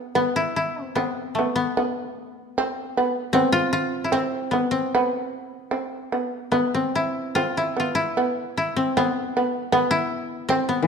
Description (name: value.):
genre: japanese traditional, Japanese chamber music.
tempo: 75 BPM.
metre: 2/4.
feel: uneven beats, rubato.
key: E miyako bushi.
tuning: A4 = 441 Hz.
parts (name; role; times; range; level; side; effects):
koto; melody; 0.0-10.9 s; A3 to F4; -23 LUFS; left 2 dB; none.
shamisen; second line; 0.0-10.9 s; B3 to C4; -25 LUFS; right 3 dB; none.
koto; accompaniment; 10.8-10.9 s; E3; -18 LUFS; left 6 dB; none.
room: moderate recital hall reverb, RT60 1.7 s.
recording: dark, warm production.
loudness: -21 LUFS.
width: side -6 dB against mid.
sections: 0.2-10.9 A section.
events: none.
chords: none.